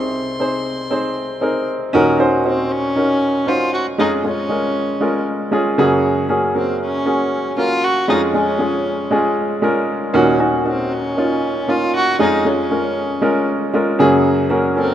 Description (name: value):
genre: pop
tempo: 117 BPM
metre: 4/4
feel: straight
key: Db major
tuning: A4 = 441 Hz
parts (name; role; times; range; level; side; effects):
- dark fiddle; melody; 0.0-14.9 s; C4 to C6; -21 LUFS; equal; none
- warm baby grand piano; accompaniment; 0.0-14.9 s; C2 to C5; -16 LUFS; equal; none
room: moderate lush hall reverb, RT60 2.4 s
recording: rough home demo mix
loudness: -15 LUFS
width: side -10 dB against mid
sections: 0.0-1.9 A section; 1.9-14.9 B section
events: none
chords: 0.0 Ab/C; 1.9 Ebm7; 4.0 Db/F; 5.8 Gbadd9; 8.1 Db/F; 10.1 Ebm7; 12.2 Db/F; 14.0 Gbadd9